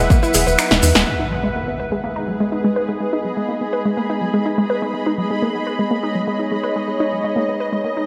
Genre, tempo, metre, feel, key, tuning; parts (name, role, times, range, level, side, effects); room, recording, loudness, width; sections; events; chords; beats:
melodic techno; 124 BPM; 4/4; straight; G# minor; A4 = 440 Hz
sweeping resonant pad; sustained chords; 0.0-8.1 s; F#3 to E5; -27 LUFS; equal; chorus, sidechain pumping
unison pluck; arpeggios; 0.0-8.0 s; F#3 to B4; -24 LUFS; equal; sidechain pumping, delay
tight sequencer bass; bass; 0.0-1.0 s; E1 to E2; -21 LUFS; equal; sidechain pumping
granular cloud pad; texture; 0.0-8.1 s; G#4 to B5; -26 LUFS; equal; built-in reverb, sidechain pumping
tube shaker; percussion; 0.1-1.0 s; -27 LUFS; equal
deep house drum kit; drums; 0.3-1.0 s; finger snaps, hi-hat, snare drum; -20 LUFS; equal; overdrive
impact; sound effects; 1.1-3.0 s; -32 LUFS; equal
wet plate reverb, RT60 2.1 s; bright 1980s-style digital production; -19 LUFS; mono
0.0-1.1 A section; 1.1-8.1 B section
drum fill 0.7-1.1; impact 1.1-3.0; filter sweep on analog synth pad 1.1-8.1
0.0 Esus2; 1.1 G#m
0.10 0.59 | 1.07 1.55 2.04 2.52 | 3.00 3.49 3.97 4.46 | 4.94 5.42 5.91 6.39 | 6.88 7.36 7.84